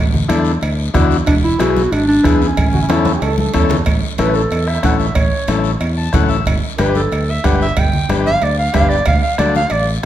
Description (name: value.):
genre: latin, cumbia.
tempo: 185 BPM.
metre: 4/4.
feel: straight.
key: unclear.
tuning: A4 = 440 Hz.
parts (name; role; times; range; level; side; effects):
fingered electric bass; bass; 0.0-10.0 s; E1 to E2; -19 LUFS; equal; none.
congas; percussion; 0.1-9.7 s; none; -24 LUFS; left 2 dB; none.
combo organ; accompaniment; 0.3-10.1 s; B3 to A5; -20 LUFS; left 5 dB; none.
bombo; percussion; 0.3-9.5 s; none; -18 LUFS; right 2 dB; none.
cowbell and timbales; percussion; 0.3-9.9 s; none; -27 LUFS; right 3 dB; none.
guiro; percussion; 0.3-10.0 s; none; -32 LUFS; left 7 dB; none.
warm clarinet; melody; 1.3-9.9 s; C#4 to G5; -17 LUFS; right 2 dB; none.
bright trombone; second line; 2.7-3.9 s; E4 to A4; -24 LUFS; right 6 dB; none.
room: moderate large studio reverb, RT60 1.3 s.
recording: none.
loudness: -13 LUFS.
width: side -12 dB against mid.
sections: 0.0-3.9 A section; 3.9-10.1 B section.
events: drum fill 2.9-3.9; clarinet solo 3.9-10.1; transistor combo organ fill 5.8-6.5.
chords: 0.0 Asus4; 1.3 E; 2.6 A; 6.5 G; 9.1 D.